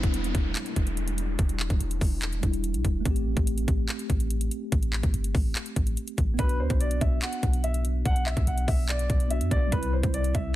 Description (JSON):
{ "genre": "hip hop, trap", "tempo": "144 BPM", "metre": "4/4", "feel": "half-time", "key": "E minor", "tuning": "A4 = 439 Hz", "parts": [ { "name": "mellow tine electric piano", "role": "accompaniment", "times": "0.0-10.6 s", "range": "G3 to G4", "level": "-34 LUFS", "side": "equal", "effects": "medium stereo tremolo, low-pass filter" }, { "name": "clean 808-style bass", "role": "bass", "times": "0.0-10.5 s", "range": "E1 to F#2", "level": "-28 LUFS", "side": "equal", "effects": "none" }, { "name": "trap drum kit", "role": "drums", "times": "0.0-10.4 s", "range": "handclaps, hi-hat, kick drum", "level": "-27 LUFS", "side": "equal", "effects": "none" }, { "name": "downlifter", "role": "sound effects", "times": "0.0-3.1 s", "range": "none", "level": "-38 LUFS", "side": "equal", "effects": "none" }, { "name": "dark concert grand piano", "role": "melody", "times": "6.4-10.5 s", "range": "B4 to F#5", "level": "-32 LUFS", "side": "equal", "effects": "low-pass filter" } ], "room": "digital ambience", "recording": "dense, heavily limited modern master, lossy compression artefacts", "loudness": "-24 LUFS", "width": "side -15 dB against mid", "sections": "0.0-10.6 A section", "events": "break 0.0-6.4", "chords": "0.0 Em7; 3.1 Am7; 6.4 Bm; 9.7 Cmaj7" }